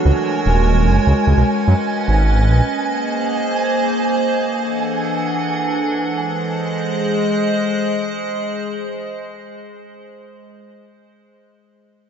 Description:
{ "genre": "IDM", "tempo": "free time", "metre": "none", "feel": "none", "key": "Ab mixolydian", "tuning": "A4 = 441 Hz", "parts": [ { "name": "icy glass pad", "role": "sustained chords", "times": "0.0-9.9 s", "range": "E3 to Gb5", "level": "-19 LUFS", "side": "right 1 dB", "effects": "chorus, built-in reverb" }, { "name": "concert harp", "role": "arpeggios", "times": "0.0-2.1 s", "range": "A3 to F#4", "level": "-30 LUFS", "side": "left 2 dB", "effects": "vintage 12-bit sampler grit, dub echo" }, { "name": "flickering grainy texture", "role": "texture", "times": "0.0-5.9 s", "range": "Ab5", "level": "-24 LUFS", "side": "right 3 dB", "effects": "built-in reverb" }, { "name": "dark detuned saw bass", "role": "bass", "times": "0.1-2.6 s", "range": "Eb1 to Gb2", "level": "-13 LUFS", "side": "equal", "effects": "none" } ], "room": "moderate spring reverb, RT60 2.3 s", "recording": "echo-heavy mix, nothing above 7.8 kHz", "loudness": "-16 LUFS", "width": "side -8 dB against mid", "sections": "0.0-5.9 A section; 5.9-9.2 B section", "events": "none", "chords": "0.0 Ab9sus4; 1.1 Db9sus4; 2.5 Bb9sus4; 4.3 E9sus4; 5.9 Ab", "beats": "free time" }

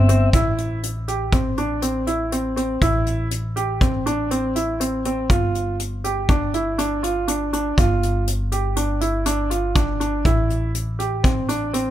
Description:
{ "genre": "progressive instrumental, band music in an uneven meter", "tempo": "121 BPM", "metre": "5/4", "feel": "straight", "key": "A minor", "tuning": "A4 = 440 Hz", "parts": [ { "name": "clear concert grand piano", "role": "arpeggios", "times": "0.0-11.9 s", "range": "C4 to G4", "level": "-22 LUFS", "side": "right 2 dB", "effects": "none" }, { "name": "upright bass", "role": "bass", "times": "0.0-11.9 s", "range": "G1 to A1", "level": "-24 LUFS", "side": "equal", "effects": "none" }, { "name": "soft brush drum kit", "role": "drums", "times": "0.1-11.8 s", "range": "hi-hat, kick drum", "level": "-22 LUFS", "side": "equal", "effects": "none" } ], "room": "little or no reverb", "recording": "none", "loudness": "-19 LUFS", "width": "side -12 dB against mid", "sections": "0.3-11.9 A section", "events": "none", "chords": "0.3 Am; 5.3 G5; 10.2 Am7", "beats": "| 0.33 0.83 1.32 1.82 2.32 | 2.81 3.31 3.81 4.31 4.80 | 5.30 5.79 6.29 6.79 7.28 | 7.78 8.27 8.77 9.26 9.75 | 10.25 10.74 11.24 11.73" }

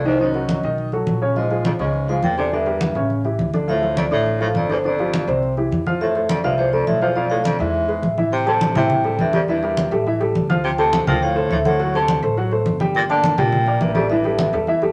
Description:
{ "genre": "Afro-Cuban jazz", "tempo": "207 BPM", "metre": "4/4", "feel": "straight", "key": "unclear", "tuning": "A4 = 440 Hz", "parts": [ { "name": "vibraphone with medium mallets", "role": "melody", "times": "0.0-14.6 s", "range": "C5 to A5", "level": "-24 LUFS", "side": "equal", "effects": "none" }, { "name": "mellow baritone saxophone", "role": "second line", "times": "0.0-14.6 s", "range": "E2 to D3", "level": "-28 LUFS", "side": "equal", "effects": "none" }, { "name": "upright bass", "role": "bass", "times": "0.0-14.9 s", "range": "G1 to A2", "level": "-28 LUFS", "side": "equal", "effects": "none" }, { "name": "warm upright piano", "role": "accompaniment", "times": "0.1-14.9 s", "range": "C3 to G5", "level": "-24 LUFS", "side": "equal", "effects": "none" }, { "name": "congas", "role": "percussion", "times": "0.1-14.9 s", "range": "none", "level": "-27 LUFS", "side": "equal", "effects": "none" } ], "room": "wet club reverb, RT60 0.7 s", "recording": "none", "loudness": "-19 LUFS", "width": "mono", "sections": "0.0-8.3 A section; 8.3-14.9 B section", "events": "none", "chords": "0.2 Cm7b5; 0.8 B7; 1.4 Bbm7; 2.5 Em7b5; 3.1 A7; 3.7 Dmadd9; 4.8 G5; 5.4 C; 6.0 Fmaj7; 7.2 Dm69/B; 7.7 E; 8.3 Am7; 10.1 A5; 10.6 Dm7; 11.8 D7; 12.9 Gm; 14.1 A5", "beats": "| 0.20 0.49 0.78 1.07 | 1.36 1.65 1.94 2.23 | 2.52 2.81 3.10 3.39 | 3.68 3.97 4.26 4.55 | 4.84 5.13 5.42 5.71 | 6.00 6.29 6.58 6.87 | 7.16 7.45 7.74 8.03 | 8.32 8.61 8.90 9.19 | 9.48 9.77 10.06 10.35 | 10.64 10.93 11.22 11.51 | 11.79 12.08 12.37 12.66 | 12.95 13.24 13.53 13.81 | 14.10 14.39 14.68" }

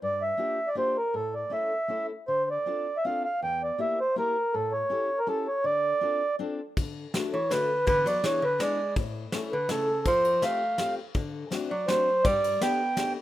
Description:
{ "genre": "musette waltz", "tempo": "162 BPM", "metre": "3/4", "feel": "straight", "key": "D minor", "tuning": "A4 = 440 Hz", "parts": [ { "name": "mellow accordion", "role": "melody", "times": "0.0-13.1 s", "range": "A4 to G5", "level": "-25 LUFS", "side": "right 1 dB", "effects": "none" }, { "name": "fingerpicked steel-string acoustic guitar", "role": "accompaniment", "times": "0.0-13.2 s", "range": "E2 to Bb4", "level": "-35 LUFS", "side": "left 5 dB", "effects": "none" }, { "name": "soft brush drum kit", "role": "drums", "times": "6.8-13.1 s", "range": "kick drum, ride cymbal, snare drum", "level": "-32 LUFS", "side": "left 1 dB", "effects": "none" }, { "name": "archtop guitar, miked and amplified", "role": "second line", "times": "7.3-13.1 s", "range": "C#3 to B3", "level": "-35 LUFS", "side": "right 1 dB", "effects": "none" } ], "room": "light reverb, small room ambience", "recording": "rough home demo mix", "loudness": "-25 LUFS", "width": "side -14 dB against mid", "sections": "0.0-6.8 A section; 6.8-13.2 B section", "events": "none", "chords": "0.0 Gm7; 1.1 A; 2.3 Dm7; 3.4 Edim; 4.5 A7; 5.6 Dm7; 6.8 D; 7.9 E7; 9.0 A; 10.1 Fadd9; 11.1 D7; 12.3 Gadd9", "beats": "| 0.02 0.39 0.76 | 1.14 1.51 1.90 | 2.28 2.66 3.04 | 3.41 3.79 4.16 | 4.53 4.89 5.27 | 5.64 6.01 6.39 | 6.77 7.14 7.51 | 7.88 8.24 8.60 | 8.97 9.33 9.69 | 10.05 10.42 10.78 | 11.15 11.52 11.89 | 12.25 12.61 12.97" }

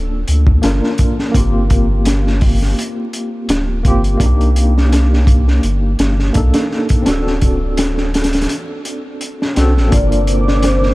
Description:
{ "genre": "trip hop", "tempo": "84 BPM", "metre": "4/4", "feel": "swing 54% on 16ths", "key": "G minor", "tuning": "A4 = 436 Hz", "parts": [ { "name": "tine electric piano", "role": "accompaniment", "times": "0.0-10.9 s", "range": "Bb3 to Bb4", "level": "-20 LUFS", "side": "equal", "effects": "medium stereo tremolo, tape echo" }, { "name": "warm sub bass", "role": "bass", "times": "0.0-10.9 s", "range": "D1 to D2", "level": "-14 LUFS", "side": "equal", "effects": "none" }, { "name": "crunchy breakbeat drum kit", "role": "drums", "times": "0.3-10.9 s", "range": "hi-hat, kick drum, snare drum", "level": "-16 LUFS", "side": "equal", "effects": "none" }, { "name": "vibraphone with soft mallets", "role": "melody", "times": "9.9-10.9 s", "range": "C5 to D5", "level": "-19 LUFS", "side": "left 1 dB", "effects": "none" }, { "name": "dark analog pad", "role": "sustained chords", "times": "9.9-10.9 s", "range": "C4 to C5", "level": "-23 LUFS", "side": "equal", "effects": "chorus" }, { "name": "flickering grainy texture", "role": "texture", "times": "10.1-10.9 s", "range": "D6", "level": "-26 LUFS", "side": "right 2 dB", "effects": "built-in reverb" } ], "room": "light reverb", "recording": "vinyl crackle", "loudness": "-12 LUFS", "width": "side -19 dB against mid", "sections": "0.0-10.9 A section", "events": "none", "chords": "0.0 Gm7; 1.4 Bb69; 4.2 Cm7; 7.1 D7; 9.9 Gm7", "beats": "0.64 | 1.35 2.06 2.78 3.49 | 4.21 4.92 5.64 6.35 | 7.07 7.78 8.49 9.21 | 9.92 10.64" }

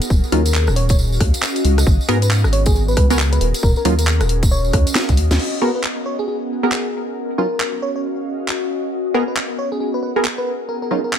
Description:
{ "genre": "UK garage, two-step garage", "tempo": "136 BPM", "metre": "4/4", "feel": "swing 61% on 16ths", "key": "G# dorian", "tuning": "A4 = 440 Hz", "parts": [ { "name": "garage drum kit", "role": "drums", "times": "0.0-11.2 s", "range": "crash cymbal, handclaps, hi-hat, rim click, snare drum", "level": "-22 LUFS", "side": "equal", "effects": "none" }, { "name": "tambourine", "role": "percussion", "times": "0.0-5.4 s", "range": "none", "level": "-29 LUFS", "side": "right 2 dB", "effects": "none" }, { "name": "ethereal airy pad", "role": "texture", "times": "0.0-11.2 s", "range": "B3 to F#5", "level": "-24 LUFS", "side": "left 1 dB", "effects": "ensemble chorus, built-in reverb, sidechain pumping" }, { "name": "rubbery square bass", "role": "bass", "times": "0.1-5.4 s", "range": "D#1 to G#2", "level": "-17 LUFS", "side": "equal", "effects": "sidechain pumping" }, { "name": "electronic kick drum", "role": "drums", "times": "0.1-5.2 s", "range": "none", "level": "-16 LUFS", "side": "equal", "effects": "none" }, { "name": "bell-like FM electric piano", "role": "melody", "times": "0.3-11.1 s", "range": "G#4 to C#5", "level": "-25 LUFS", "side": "equal", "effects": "chorus, cassette tape, ping-pong delay" }, { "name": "punchy chord stab", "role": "stabs", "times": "0.3-11.0 s", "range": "F#3 to A#4", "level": "-21 LUFS", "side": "right 1 dB", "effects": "chorus, ping-pong delay" } ], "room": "little or no reverb", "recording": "none", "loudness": "-16 LUFS", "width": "side -9 dB against mid", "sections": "0.0-5.4 A section; 5.4-11.2 B section", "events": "drum fill 5.0-5.4; band accent 5.3", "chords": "0.0 D#m9; 1.9 G#m9; 3.4 D#m9; 5.4 G#m9; 6.9 D#m9; 8.9 G#m9; 10.5 D#m9", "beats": "| 0.10 0.54 0.98 1.43 | 1.87 2.31 2.75 3.19 | 3.63 4.07 4.51 4.95 | 5.39 5.84 6.28 6.72 | 7.16 7.60 8.04 8.48 | 8.93 9.37 9.81 10.25 | 10.69 11.13" }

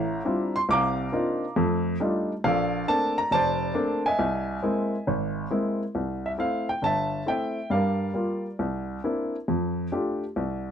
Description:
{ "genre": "solo jazz", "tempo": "137 BPM", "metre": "4/4", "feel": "swing 68% on 8ths", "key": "C major from 5.9 s", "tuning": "A4 = 440 Hz", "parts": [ { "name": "warm upright piano", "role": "solo", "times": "0.0-10.7 s", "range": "F1 to D6", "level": "-24 LUFS", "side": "equal", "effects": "none" } ], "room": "light reverb", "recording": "close, detailed microphones", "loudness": "-24 LUFS", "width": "side -8 dB against mid", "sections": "0.0-5.9 A section; 5.9-10.7 B section", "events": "none", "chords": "0.0 Dm11; 0.7 Cm11; 1.6 F13; 2.4 Bbmaj9; 4.2 C7alt; 5.9 C6; 7.7 Gm7; 8.6 C9; 9.5 F69", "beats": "0.25 | 0.69 1.13 1.56 2.00 | 2.44 2.88 3.32 3.76 | 4.19 4.63 5.07 5.51 | 5.95 6.39 6.83 7.27 | 7.71 8.15 8.59 9.03 | 9.47 9.91 10.36" }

